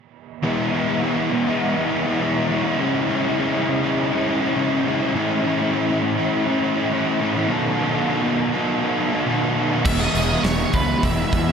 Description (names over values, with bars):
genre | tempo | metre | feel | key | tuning
rock, shoegaze and dream pop | 102 BPM | 4/4 | straight | E major | A4 = 440 Hz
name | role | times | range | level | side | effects
biting overdriven guitar | riff | 0.4-11.5 s | E2 to F#4 | -23 LUFS | right 9 dB | reverse reverb
crunchy overdriven guitar | riff | 0.4-11.5 s | A2 to A4 | -21 LUFS | left 4 dB | lush chorus
octave-fuzz lead guitar | melody | 9.8-11.5 s | B4 to E5 | -25 LUFS | right 4 dB | distortion, diffuse ambient delay
fuzz fingered electric bass | bass | 9.9-11.5 s | E1 to E2 | -24 LUFS | equal | overdrive
huge arena drum kit | drums | 9.9-11.5 s | crash cymbal, hi-hat, kick drum, snare drum | -23 LUFS | equal | none
room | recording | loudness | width
wet huge ambient reverb, RT60 4.0 s | dreamy mix soaked in reverb | -18 LUFS | side -6 dB against mid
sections
0.4-9.9 A section; 9.9-11.5 B section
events
none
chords
0.4 E; 2.8 C#m; 5.1 A; 7.5 B7; 9.9 E